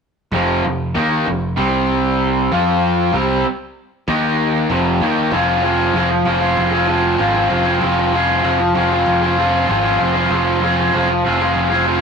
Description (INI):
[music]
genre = rock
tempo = 96 BPM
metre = 4/4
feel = straight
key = F minor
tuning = A4 = 442 Hz
[part]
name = raw garage guitar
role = riff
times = 0.3-12.0 s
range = F2 to Ab4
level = -15 LUFS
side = equal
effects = overdrive
[part]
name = modern bright picked electric bass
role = bass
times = 0.3-12.0 s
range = F1 to F2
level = -21 LUFS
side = equal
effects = overdrive
[sound]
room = moderate stone room reverb, RT60 1.0 s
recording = rough rehearsal-room recording, warm saturation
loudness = -14 LUFS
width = side -6 dB against mid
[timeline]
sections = 0.3-5.3 A section; 5.3-12.0 B section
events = none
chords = 0.3 F5; 1.6 C5; 2.5 F5; 4.1 Eb5; 4.7 F5; 5.3 Fm